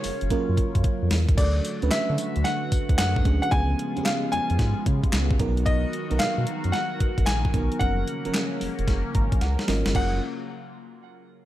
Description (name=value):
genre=R&B, new jack swing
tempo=112 BPM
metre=4/4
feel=swing 66% on 16ths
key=F# major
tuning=A4 = 437 Hz
part: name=clear concert grand piano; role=melody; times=0.0-10.2 s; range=C#5 to G#5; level=-30 LUFS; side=left 1 dB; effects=ping-pong delay
part: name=FM electric piano with soft pad layer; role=accompaniment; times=0.0-10.2 s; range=E#3 to A#5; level=-30 LUFS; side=right 4 dB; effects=chorus, tremolo
part: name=phased analog pad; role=sustained chords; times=0.0-10.2 s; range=C#3 to A#4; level=-33 LUFS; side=left 1 dB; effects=phaser, chorus
part: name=round analog bass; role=bass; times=0.0-10.2 s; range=E#1 to D3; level=-25 LUFS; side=equal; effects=none
part: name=clean 12-bit digital drum machine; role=drums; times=0.0-10.1 s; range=crash cymbal, handclaps, hi-hat, kick drum, snare drum, tambourine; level=-25 LUFS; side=equal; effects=overdrive, gated reverb
room=digital ambience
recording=none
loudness=-21 LUFS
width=side -14 dB against mid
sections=0.0-1.4 A section; 1.4-9.9 B section; 9.9-11.5 C section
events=drum fill 0.3-1.4, 9.4-9.9; FM electric piano fill 8.9-9.9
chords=0.0 F#maj7; 1.4 Dmaj7; 3.5 C#7; 5.4 Bmaj7; 7.8 F#maj7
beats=0.31 0.84 | 1.38 1.91 2.45 2.98 | 3.52 4.06 4.59 5.13 | 5.66 6.20 6.73 7.27 | 7.81 8.34 8.88 9.41 | 9.95